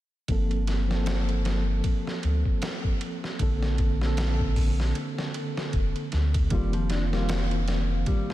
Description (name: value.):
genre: trip hop.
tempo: 77 BPM.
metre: 4/4.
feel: swing 58% on 16ths.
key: G minor.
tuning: A4 = 439 Hz.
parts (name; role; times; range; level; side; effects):
tine electric piano; accompaniment; 0.3-8.3 s; D3 to A4; -30 LUFS; equal; medium stereo tremolo, low-pass filter, tape echo.
soft dub sub bass; bass; 0.3-8.0 s; F1 to D2; -25 LUFS; equal; none.
trip hop sampler-style drum kit; drums; 0.3-8.3 s; hi-hat, kick drum, ride cymbal, snare drum; -29 LUFS; equal; none.
mellow electric guitar; arpeggios; 6.5-8.3 s; F3 to D4; -34 LUFS; left 4 dB; vintage 12-bit sampler grit, analog delay.
room: light reverb.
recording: none.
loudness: -24 LUFS.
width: side -15 dB against mid.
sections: 0.3-8.3 A section.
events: filter sweep on tine electric piano 0.3-8.3.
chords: 0.3 Gm11; 3.4 Bbmaj9; 6.5 F7sus4.